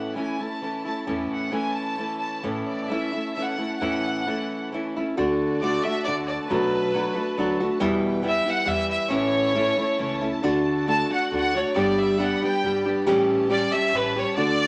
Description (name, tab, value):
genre	mexican folk, mariachi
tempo	136 BPM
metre	3/4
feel	rubato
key	A major, D major from 5.2 s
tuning	A4 = 440 Hz
part	rich chamber violin section	melody	0.0-14.7 s	B4 to A5	-28 LUFS	equal	none
part	nylon-string guitar	accompaniment	0.0-14.7 s	E2 to G4	-26 LUFS	equal	none
part	rich studio violin section	sustained chords	0.0-14.7 s	D4 to B5	-39 LUFS	equal	none
part	upright bass	bass	1.1-14.7 s	G1 to E2	-40 LUFS	equal	none
room	wet studio reverb, RT60 0.8 s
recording	none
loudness	-24 LUFS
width	mono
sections	0.0-5.2 A section; 5.2-14.7 B section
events	none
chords	0.0 A; 5.2 D; 6.5 Bm7; 7.8 Em; 9.1 A; 10.4 D; 11.8 G; 13.1 A7